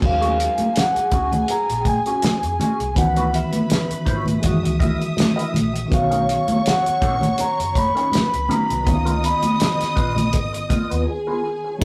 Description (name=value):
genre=lush 1970s-style soul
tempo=81 BPM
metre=4/4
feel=swing 54% on 16ths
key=unclear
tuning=A4 = 440 Hz
part: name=dark studio string section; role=second line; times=0.0-11.8 s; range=D#4 to D#6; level=-31 LUFS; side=equal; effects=none
part: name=barky reed electric piano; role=accompaniment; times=0.0-11.8 s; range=D#3 to F#4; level=-28 LUFS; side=equal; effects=overdrive, fast tremolo
part: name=mellow electric guitar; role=riff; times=0.0-11.8 s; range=B3 to D#5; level=-32 LUFS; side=equal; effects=wah, harmonic tremolo
part: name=vintage muted fingered electric bass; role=bass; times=0.0-11.8 s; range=F#1 to E#2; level=-29 LUFS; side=equal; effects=none
part: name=cloth-damped thuddy drum kit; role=drums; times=0.0-11.8 s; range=crash cymbal, hi-hat, kick drum, snare drum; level=-25 LUFS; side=equal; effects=none
part: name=vibraphone with medium mallets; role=melody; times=0.1-10.3 s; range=E5 to B5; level=-24 LUFS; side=equal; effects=none
part: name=congas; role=percussion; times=0.2-10.9 s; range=none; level=-27 LUFS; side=equal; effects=none
room=wet studio reverb, RT60 0.6 s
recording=rough rehearsal-room recording, tube saturation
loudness=-20 LUFS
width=mono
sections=0.0-11.8 A section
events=break 11.1-11.8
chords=0.0 D#m11; 3.0 C#m11; 4.4 F#13; 5.9 Bmaj9; 8.9 C#13